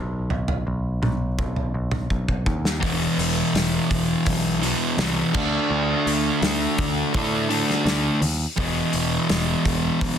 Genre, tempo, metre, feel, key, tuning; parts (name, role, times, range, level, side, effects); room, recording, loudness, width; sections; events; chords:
quiet-loud alternative rock; 83 BPM; 4/4; straight; A4 = 440 Hz
picked electric bass; bass; 0.0-10.2 s; E1 to A2; -27 LUFS; equal
loose indie drum kit; drums; 0.3-10.2 s; crash cymbal, hi-hat, kick drum, snare drum, toms; -26 LUFS; equal
fuzz guitar; riff; 2.8-10.2 s; E2 to D4; -21 LUFS; equal; distortion
light reverb; dense, heavily limited modern master; -20 LUFS; side -8 dB against mid
0.0-2.8 A section; 2.8-10.2 B section
drum fill 2.1-2.8
0.0 B; 2.8 E5; 5.3 D5; 8.6 E5